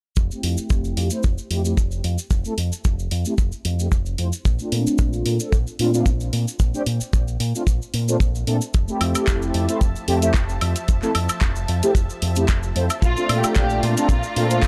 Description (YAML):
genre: nu-disco, nu disco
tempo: 112 BPM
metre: 4/4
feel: swing 54% on 16ths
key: F major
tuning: A4 = 440 Hz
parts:
  - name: fingered electric bass with an envelope filter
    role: bass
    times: 0.2-14.7 s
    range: F1 to Bb2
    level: -25 LUFS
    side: equal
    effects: none
  - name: kick drum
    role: drums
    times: 0.2-14.7 s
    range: none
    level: -22 LUFS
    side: equal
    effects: none
  - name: cabasa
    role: percussion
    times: 0.2-14.7 s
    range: none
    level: -36 LUFS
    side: equal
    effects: none
  - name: mellow synth brass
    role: accompaniment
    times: 0.3-14.6 s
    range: A3 to C5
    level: -26 LUFS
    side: equal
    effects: chorus, phaser, sidechain pumping, tape echo
  - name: house drum kit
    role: drums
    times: 0.4-14.7 s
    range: handclaps, hi-hat, woodblock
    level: -30 LUFS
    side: equal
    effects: none
  - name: lush unison pad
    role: sustained chords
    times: 8.7-14.7 s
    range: F3 to Bb5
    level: -35 LUFS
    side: equal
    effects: chorus, phaser, sidechain pumping
  - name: dark studio violin section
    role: melody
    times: 13.0-14.7 s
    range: F4 to G4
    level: -27 LUFS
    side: equal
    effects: none
room: little or no reverb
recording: dry, gritty hardware recording, transformer saturation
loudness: -21 LUFS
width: mono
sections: 0.2-14.7 A section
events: filter sweep on analog polysynth 0.2-14.7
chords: 0.2 Fmaj7; 4.5 Bbmaj7; 8.7 Fmaj7; 13.0 Bbmaj7